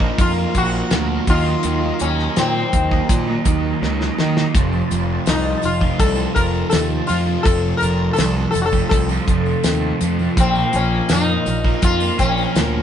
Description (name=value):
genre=psychedelic rock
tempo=82 BPM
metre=4/4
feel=straight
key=F phrygian dominant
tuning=A4 = 440 Hz
part: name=sitar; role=melody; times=0.0-12.8 s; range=C4 to Bb4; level=-21 LUFS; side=left 4 dB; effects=none
part: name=mellow tonewheel organ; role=sustained chords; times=0.0-12.8 s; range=Gb3 to Bb5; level=-30 LUFS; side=right 1 dB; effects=slow rotary speaker, overdrive, chorus vibrato
part: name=fuzz guitar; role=riff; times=0.0-12.8 s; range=F2 to Eb4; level=-22 LUFS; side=right 3 dB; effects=distortion, phaser
part: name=fuzz picked electric bass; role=bass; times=0.0-12.8 s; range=F1 to Eb3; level=-21 LUFS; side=equal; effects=overdrive
part: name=damped 70s drum kit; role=drums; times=0.0-12.7 s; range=hi-hat, kick drum, snare drum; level=-19 LUFS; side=equal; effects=none
part: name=tambourine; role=percussion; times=4.7-12.7 s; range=none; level=-38 LUFS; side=right 6 dB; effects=none
room=moderate studio reverb, RT60 0.6 s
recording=band playing live in one room, nothing above 10.7 kHz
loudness=-16 LUFS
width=side -9 dB against mid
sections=0.0-12.8 A section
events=drum fill 3.8-4.6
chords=0.0 Bb5; 1.3 Ebm; 4.6 F; 10.4 Bbm